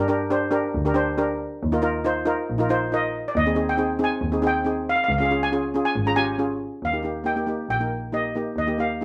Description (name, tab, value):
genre	calypso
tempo	138 BPM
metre	4/4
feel	straight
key	Eb major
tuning	A4 = 440 Hz
part	steel pan	accompaniment	0.0-9.0 s	Bb3 to C5	-26 LUFS	equal	none
part	warm double bass	bass	0.0-9.0 s	Ab1 to G2	-31 LUFS	equal	none
part	steel pan	melody	2.9-9.0 s	D5 to Bb5	-27 LUFS	equal	slapback echo
room	little or no reverb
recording	recorded outdoors, with no room sound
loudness	-23 LUFS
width	mono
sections	0.0-6.8 A section; 6.8-9.0 B section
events	none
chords	0.0 Gm; 1.6 Ebsus2; 3.4 Ab/Eb; 5.1 Db; 6.8 Ebadd9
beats	0.32 0.75 1.19 | 1.62 2.05 2.49 2.92 | 3.35 3.79 4.22 4.66 | 5.09 5.52 5.96 6.39 | 6.83 7.26 7.70 8.13 | 8.57 9.01